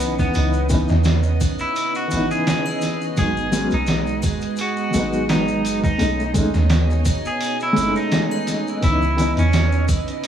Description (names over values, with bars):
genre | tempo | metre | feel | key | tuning
trip hop | 85 BPM | 4/4 | swing 54% on 16ths | C# minor | A4 = 440 Hz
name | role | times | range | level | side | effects
electric guitar at the edge of break-up | melody | 0.0-9.8 s | B3 to G#4 | -25 LUFS | equal | tape echo
felt-muted upright piano | accompaniment | 0.0-9.4 s | E3 to D#4 | -23 LUFS | left 1 dB | tremolo, vintage 12-bit sampler grit
string machine, cellos | sustained chords | 0.0-10.3 s | G#3 to G#5 | -27 LUFS | right 2 dB | ensemble chorus
soft 808-style bass | bass | 0.0-10.1 s | F#1 to E2 | -21 LUFS | right 1 dB | none
trip hop sampler-style drum kit | drums | 0.0-10.3 s | hi-hat, kick drum, snare drum | -23 LUFS | equal | overdrive
maracas and triangle | percussion | 0.0-10.3 s | none | -36 LUFS | left 5 dB | none
bowed-like drone | texture | 0.0-10.3 s | D#5 | -33 LUFS | right 3 dB | built-in reverb
room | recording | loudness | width
light reverb, digital ambience | vinyl crackle, small room ambience | -17 LUFS | side -9 dB against mid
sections
0.0-10.3 A section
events
none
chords
0.0 C#m9; 3.2 G#m7; 6.0 B13; 8.8 C#m9